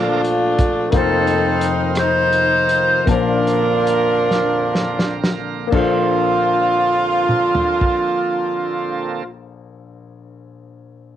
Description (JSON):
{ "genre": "slow gospel", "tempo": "38-59 BPM (dotted quarters)", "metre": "6/8", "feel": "straight", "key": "Bb major", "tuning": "A4 = 442 Hz", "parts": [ { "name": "clear saxophone section", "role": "melody", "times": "0.0-9.3 s", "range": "A3 to C5", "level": "-16 LUFS", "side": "right 1 dB", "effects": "cassette tape" }, { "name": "warm upright piano", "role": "accompaniment", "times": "0.0-11.2 s", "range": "F1 to A5", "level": "-23 LUFS", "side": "left 6 dB", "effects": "cassette tape" }, { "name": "bright tonewheel organ", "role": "sustained chords", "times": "0.0-9.2 s", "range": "Bb2 to Bb4", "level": "-28 LUFS", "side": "right 9 dB", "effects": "slow rotary speaker, overdrive, cassette tape" }, { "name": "clear studio string section", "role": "sustained chords", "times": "0.0-0.9 s", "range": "F3 to C5", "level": "-33 LUFS", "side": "equal", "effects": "none" }, { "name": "warm soul drum kit", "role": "drums", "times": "0.2-8.1 s", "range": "crash cymbal, hi-hat, kick drum, rim click, snare drum, toms", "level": "-21 LUFS", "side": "right 1 dB", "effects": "cassette tape" } ], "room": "light reverb", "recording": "home recording on cassette", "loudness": "-15 LUFS", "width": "side -11 dB against mid", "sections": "0.9-5.7 A section; 5.7-11.2 B section", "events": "slowing down 0.9-5.7; drum fill 4.3-5.7", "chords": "0.0 Bbmaj9; 0.9 F7sus4; 3.1 Bbmaj9" }